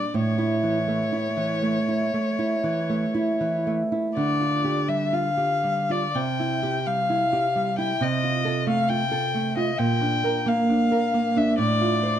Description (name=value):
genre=romantic duo for violin and classical guitar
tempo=56-68 BPM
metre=4/4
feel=rubato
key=unclear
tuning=A4 = 440 Hz
part: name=rich violin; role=melody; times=0.0-12.2 s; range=C#5 to G5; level=-25 LUFS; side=left 4 dB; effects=none
part: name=nylon-string guitar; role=accompaniment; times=0.0-12.2 s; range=A2 to C5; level=-23 LUFS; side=right 2 dB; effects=none
room=moderate spring reverb, RT60 1.2 s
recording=dark, warm production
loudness=-21 LUFS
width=side -10 dB against mid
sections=0.0-12.2 A section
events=none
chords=0.1 A; 4.2 G5/D; 6.2 C; 8.0 F/C; 9.8 Bb; 11.6 F/A